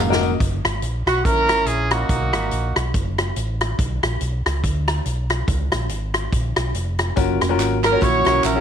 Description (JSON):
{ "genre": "uptempo gospel", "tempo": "142 BPM", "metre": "4/4", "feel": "swing 58% on 8ths", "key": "F# major", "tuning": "A4 = 440 Hz", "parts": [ { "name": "warm horn section", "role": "melody", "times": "0.0-2.9, 7.8-8.6 s", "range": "A#3 to C#5", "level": "-19 LUFS", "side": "right 2 dB", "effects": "none" }, { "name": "clear baby grand piano", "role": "accompaniment", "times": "0.0-0.4, 7.2-8.6 s", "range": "A#2 to E#5", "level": "-22 LUFS", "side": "left 12 dB", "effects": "none" }, { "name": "mellow tonewheel organ", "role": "sustained chords", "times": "0.0-0.4, 7.2-8.6 s", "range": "D#3 to F#4", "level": "-26 LUFS", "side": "right 12 dB", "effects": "slow rotary speaker, chorus vibrato" }, { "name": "fingered electric bass", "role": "bass", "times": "0.0-8.6 s", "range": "E#1 to D2", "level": "-23 LUFS", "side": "equal", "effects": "none" }, { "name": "swinging big-band drum kit", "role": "drums", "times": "0.1-8.6 s", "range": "hi-hat, kick drum, rim click, snare drum", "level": "-22 LUFS", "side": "equal", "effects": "none" }, { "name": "tambourine and handclaps", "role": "percussion", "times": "0.2-0.3, 7.2-8.6 s", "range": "none", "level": "-30 LUFS", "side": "right 5 dB", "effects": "none" } ], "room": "light reverb, studio reverb", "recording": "1960s-style stereo with parts hard left and right", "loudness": "-18 LUFS", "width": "side -8 dB against mid", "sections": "0.4-8.6 A section", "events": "grand piano fill 0.0-0.4; drum fill 0.0-0.4", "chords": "0.4 F#; 1.2 F#13/G#; 2.1 Bmaj7; 2.9 F#m; 3.8 Bm; 5.5 C#7; 7.2 F#maj7; 8.0 F#7/A#", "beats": "| 0.40 0.83 1.25 1.67 | 2.10 2.52 2.94 3.36 | 3.79 4.21 4.63 5.06 | 5.48 5.90 6.33 6.75 | 7.17 7.59 8.02 8.44" }